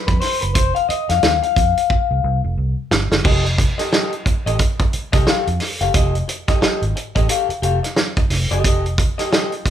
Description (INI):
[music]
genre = funk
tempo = 89 BPM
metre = 4/4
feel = swing 60% on 16ths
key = F mixolydian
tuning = A4 = 441 Hz
[part]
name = electric guitar through a small old amp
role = accompaniment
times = 0.0-9.7 s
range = G4 to F5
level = -21 LUFS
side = left 5 dB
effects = none
[part]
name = vintage muted fingered electric bass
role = bass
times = 0.1-9.7 s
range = F1 to F2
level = -22 LUFS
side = right 1 dB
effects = none
[part]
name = warm soul drum kit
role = drums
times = 0.1-9.7 s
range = crash cymbal, hi-hat, kick drum, snare drum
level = -18 LUFS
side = right 1 dB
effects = none
[sound]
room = moderate large studio reverb, RT60 0.8 s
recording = band playing live in one room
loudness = -16 LUFS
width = side -10 dB against mid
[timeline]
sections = 0.0-3.2 A section; 3.2-9.7 B section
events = clean electric guitar solo 0.0-3.2; drum fill 1.9-3.2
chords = 0.0 F5; 3.2 F9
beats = | 0.55 1.23 1.90 2.57 | 3.25 3.92 4.59 5.27 | 5.94 6.62 7.29 7.97 | 8.64 9.32